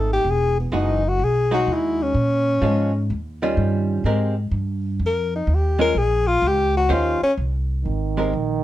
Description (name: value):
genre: jazz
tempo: 126 BPM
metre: 4/4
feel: swing 67% on 8ths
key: Ab major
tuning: A4 = 439 Hz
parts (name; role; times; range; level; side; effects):
- mellow tenor saxophone; melody; 0.0-7.3 s; B3 to Bb4; -20 LUFS; left 2 dB; none
- archtop guitar, miked and amplified; accompaniment; 0.0-8.3 s; Eb3 to C5; -24 LUFS; right 1 dB; none
- upright bass; bass; 0.0-8.6 s; E1 to Bb2; -22 LUFS; equal; none
- mellow trombone; second line; 7.8-8.6 s; Eb3; -24 LUFS; right 10 dB; none
room: light reverb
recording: dark, warm production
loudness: -18 LUFS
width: side -14 dB against mid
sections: 0.0-7.9 A section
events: tenor saxophone solo 0.0-7.9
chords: 0.2 Emaj9; 2.1 Bbm7; 3.1 Eb9; 4.0 Abmaj9; 6.0 Bbm; 6.9 Eb6; 7.9 Abmaj9